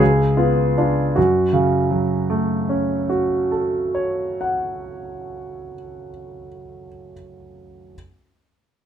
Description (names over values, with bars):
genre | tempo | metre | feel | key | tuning
classical, romantic character piece for solo piano | 53 BPM (dotted quarters) | 6/8 | rubato | F# minor | A4 = 440 Hz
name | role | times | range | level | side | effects
warm concert grand piano | solo | 0.0-8.0 s | C#2 to F#5 | -18 LUFS | right 1 dB | none
room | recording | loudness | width
moderate studio reverb, RT60 0.5 s | none | -17 LUFS | side -9 dB against mid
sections
0.0-1.2 A section; 1.2-5.7 B section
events
slowing down 0.0-1.2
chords
0.0 C#7b9; 1.2 F#m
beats
| 1.16 2.29 | 3.40 4.52